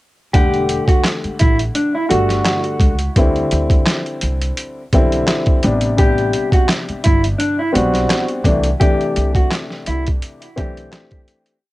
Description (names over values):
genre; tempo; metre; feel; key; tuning
hip hop, boom-bap hip-hop; 85 BPM; 4/4; swing 55% on 16ths; E minor; A4 = 440 Hz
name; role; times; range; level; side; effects
mellow electric guitar; melody; 0.3-11.6 s; D4 to G4; -20 LUFS; equal; high-pass filter, low-pass filter, tape echo
dark grand piano; accompaniment; 0.3-11.6 s; C3 to F#5; -20 LUFS; left 1 dB; high-pass filter, low-pass filter, cassette tape
upright bass; bass; 0.3-10.8 s; E1 to D2; -20 LUFS; equal; none
boom bap sampler-style drum kit; drums; 0.3-11.6 s; handclaps, hi-hat, kick drum, snare drum; -16 LUFS; equal; cassette tape
room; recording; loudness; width
small room ambience; home recording on cassette; -14 LUFS; side -18 dB against mid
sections
0.3-11.6 verse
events
fade-out 8.8-11.6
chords
0.3 Em11; 3.2 D9sus4; 5.6 Am11; 8.5 C69